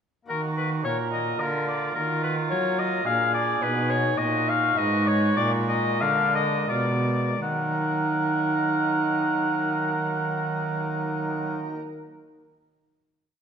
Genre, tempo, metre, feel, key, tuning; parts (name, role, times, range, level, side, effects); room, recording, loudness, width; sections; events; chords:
classical, baroque-style sonata movement with continuo; 80-109 BPM; 3/4; straight; Eb minor; A4 = 439 Hz
pipe organ, cornet; accompaniment; 0.2-11.8 s; Ab2 to Cb5; -29 LUFS; right 2 dB
clear oboe; melody; 0.3-11.5 s; Bb4 to Gb5; -26 LUFS; left 5 dB
warm oboe; second line; 0.3-11.5 s; D4 to Bb4; -30 LUFS; right 7 dB
rich cello; bass; 0.3-11.5 s; Ab2 to Gb3; -29 LUFS; right 1 dB
wet recital hall reverb, RT60 1.6 s; minimal, uncompressed stereo recording; -22 LUFS; side -7 dB against mid
0.3-7.4 A section; 7.4-11.9 final chord
slowing down 2.8-7.4
0.3 Ebm; 1.4 Bb/D; 2.0 Ebm; 3.1 Bb7; 3.6 B; 4.8 Abm; 5.4 Bb7; 7.4 Ebm